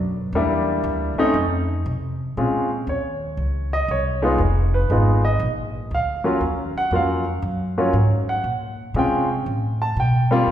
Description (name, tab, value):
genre	jazz piano trio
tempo	118 BPM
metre	4/4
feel	swing 66% on 8ths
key	Bb minor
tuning	A4 = 440 Hz
part	upright bass	bass	0.0-10.5 s	F1 to C3	-22 LUFS	equal	none
part	clear baby grand piano	melody	0.4-10.5 s	Gb3 to A5	-21 LUFS	equal	none
room	wet scoring stage reverb, RT60 1.9 s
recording	recorded in a church or concert hall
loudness	-19 LUFS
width	side -10 dB against mid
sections	0.0-2.4 A section; 2.4-10.5 B section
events	grand piano solo 0.0-2.4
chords	0.3 Em7b5; 1.4 F5; 2.4 Bbm9; 4.4 Fm7b5; 5.4 Bb; 6.4 Ebm9; 8.5 Bbm9; 9.5 Asus2